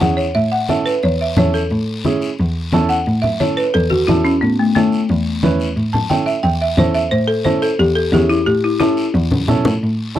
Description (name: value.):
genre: latin, cumbia.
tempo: 177 BPM.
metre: 4/4.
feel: straight.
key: A major.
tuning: A4 = 440 Hz.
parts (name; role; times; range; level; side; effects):
folk marimba with hard mallets; melody; 0.0-9.0 s; A3 to A5; -17 LUFS; left 1 dB; none.
dark upright piano; accompaniment; 0.0-10.2 s; C#4 to B4; -20 LUFS; right 6 dB; none.
dark cello; bass; 0.0-10.2 s; E2 to C#3; -19 LUFS; equal; none.
congas; percussion; 0.0-10.2 s; none; -20 LUFS; left 3 dB; none.
guiro; percussion; 0.0-10.2 s; none; -31 LUFS; left 6 dB; none.
room: little or no reverb.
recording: dry, close 1970s-style studio recording.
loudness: -14 LUFS.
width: side -12 dB against mid.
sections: 0.0-9.8 A section.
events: marimba solo 0.0-9.8; drum fill 8.8-9.8.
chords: 0.0 A.